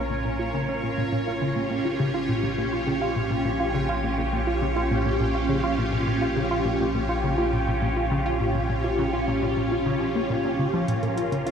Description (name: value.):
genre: ambient, sequencer-driven space music.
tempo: 103 BPM.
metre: 4/4.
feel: straight.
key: Bb dorian.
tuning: A4 = 436 Hz.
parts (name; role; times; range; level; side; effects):
phased string machine; sustained chords; 0.0-11.5 s; Db4 to Bb4; -26 LUFS; equal; ensemble chorus, phaser.
tight sequenced synth; riff; 0.0-11.5 s; Bb2 to F4; -27 LUFS; equal; chorus, tape echo.
fat analog bass; bass; 0.0-11.5 s; Bb1; -31 LUFS; equal; none.
bubbling stepped-filter texture; texture; 0.0-11.5 s; Db4 to Db5; -35 LUFS; right 2 dB; chorus, built-in reverb.
electronic hi-hat and bongos; percussion; 10.9-11.5 s; none; -39 LUFS; right 2 dB; tape echo.
room: wet huge ambient reverb, RT60 7.9 s.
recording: played on a big sound system in a bare room, large studio reverb.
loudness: -22 LUFS.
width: side -7 dB against mid.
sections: 0.0-11.5 A section.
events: none.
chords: 0.0 Bbm.